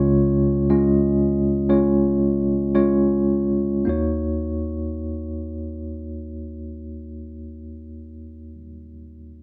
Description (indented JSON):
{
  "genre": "folk",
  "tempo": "52-64 BPM",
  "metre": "4/4",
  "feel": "straight",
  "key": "Eb minor",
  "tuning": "A4 = 440 Hz",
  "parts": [
    { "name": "tine electric piano", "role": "accompaniment", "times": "0.0-9.4 s", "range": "Db2 to Eb5", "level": "-23 LUFS", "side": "equal", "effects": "medium tremolo" }
  ],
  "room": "little or no reverb",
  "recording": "close, detailed microphones",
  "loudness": "-21 LUFS",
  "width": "mono",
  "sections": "0.0-3.9 A section; 3.9-8.4 B section",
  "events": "slowing down 0.0-3.9",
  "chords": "0.0 Dbadd9; 3.9 Ebm7",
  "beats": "0.70 1.70 2.75 | 3.87 5.01 6.15 7.29"
}